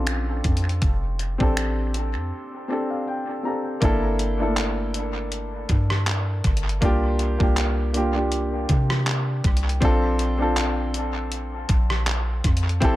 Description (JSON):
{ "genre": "contemporary R&B", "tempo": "80 BPM", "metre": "4/4", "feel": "swing 54% on 16ths", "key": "G dorian", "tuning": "A4 = 440 Hz", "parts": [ { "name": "dark concert grand piano", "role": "accompaniment", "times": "0.0-13.0 s", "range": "A3 to Bb5", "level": "-26 LUFS", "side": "equal", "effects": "dub echo" }, { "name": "soft 808-style bass", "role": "bass", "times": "0.0-13.0 s", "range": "F1 to C3", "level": "-24 LUFS", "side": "equal", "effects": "none" }, { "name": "detuned 8-bit digital drum machine", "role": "drums", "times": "0.1-13.0 s", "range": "finger snaps, handclaps, hi-hat, kick drum, rim click", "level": "-25 LUFS", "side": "equal", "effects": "dub echo" } ], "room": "light reverb, digital ambience", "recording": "echo-heavy mix", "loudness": "-21 LUFS", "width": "side -16 dB against mid", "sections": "0.0-3.8 A section; 3.8-13.0 B section", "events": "break 2.3-3.8; grand piano fill 2.3-3.8", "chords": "0.0 Bbmaj9; 0.8 F69; 3.8 Gm69; 6.8 C9sus4; 9.8 Bbmaj9" }